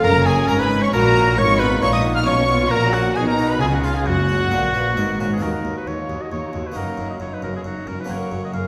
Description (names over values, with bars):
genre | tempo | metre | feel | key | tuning
classical, baroque-style concerto movement with solo episodes | 135 BPM | 3/4 | straight | F# major, Eb minor from 5.4 s | A4 = 440 Hz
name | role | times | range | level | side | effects
clear oboe | melody | 0.0-8.7 s | E#4 to E#5 | -24 LUFS | equal | none
warm studio violin section | melody | 0.0-8.7 s | E#5 to E#6 | -27 LUFS | equal | none
warm chamber violin section | second line | 0.0-8.7 s | A#3 to E#6 | -32 LUFS | equal | none
harpsichord | accompaniment | 0.0-8.7 s | Eb2 to B4 | -30 LUFS | equal | none
rich chamber viola section | accompaniment | 0.0-8.7 s | C#4 to Bb4 | -29 LUFS | equal | none
rich chamber double bass section | bass | 0.0-8.6 s | F#1 to Eb2 | -27 LUFS | equal | none
warm chamber cello section | bass | 0.0-8.6 s | Eb2 to C#3 | -26 LUFS | equal | none
room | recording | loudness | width
wet recital hall reverb, RT60 1.9 s | heard from further back in the room | -19 LUFS | mono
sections
0.0-5.4 A section; 5.4-8.7 B section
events
none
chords
0.0 F#; 1.4 C#7/G#; 2.7 F#/A#; 3.2 B; 3.6 C#; 4.1 F#; 5.4 Ebm; 6.8 Ebm/Gb; 8.1 Gb